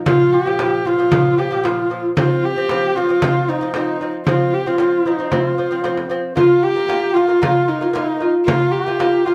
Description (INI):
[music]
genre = mongolian traditional, Mongolian folk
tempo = 114 BPM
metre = 4/4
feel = straight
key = Bb zhi mode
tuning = A4 = 441 Hz
[part]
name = lute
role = arpeggios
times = 0.0-9.3 s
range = Bb2 to F4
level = -23 LUFS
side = equal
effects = none
[part]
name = dark horsehead fiddle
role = melody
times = 0.1-9.3 s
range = Eb4 to G4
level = -20 LUFS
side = equal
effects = none
[part]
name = trumpet with cup mute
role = second line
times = 0.1-9.3 s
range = Eb4 to G4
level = -28 LUFS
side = equal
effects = none
[part]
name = frame drum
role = percussion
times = 0.1-9.3 s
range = none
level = -23 LUFS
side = equal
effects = none
[sound]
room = wet studio reverb, RT60 0.8 s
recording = band playing live in one room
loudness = -17 LUFS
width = mono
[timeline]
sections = 0.0-9.3 A section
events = none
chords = 0.0 Bb5; 2.2 F5; 6.4 Bb5